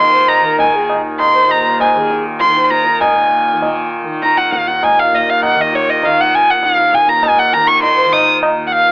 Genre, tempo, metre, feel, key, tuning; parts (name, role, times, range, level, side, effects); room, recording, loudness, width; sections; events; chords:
indian classical, Hindustani; 100 BPM; 4/4; straight; Eb raga bhimpalasi; A4 = 439 Hz
dark violin; melody; 0.0-8.9 s; Db5 to Eb6; -11 LUFS; equal; cassette tape
tanpura; drone; 0.0-8.9 s; Eb2 to Eb3; -20 LUFS; equal; cassette tape
pedal harmonium; second line; 0.1-3.1, 8.0-8.9 s; F4 to C5; -19 LUFS; equal; cassette tape
tabla; percussion; 0.3-8.6 s; -20 LUFS; right 1 dB
light reverb; home recording on cassette, AM radio sound; -10 LUFS; side -29 dB against mid
0.0-3.0 A section; 3.0-8.9 B section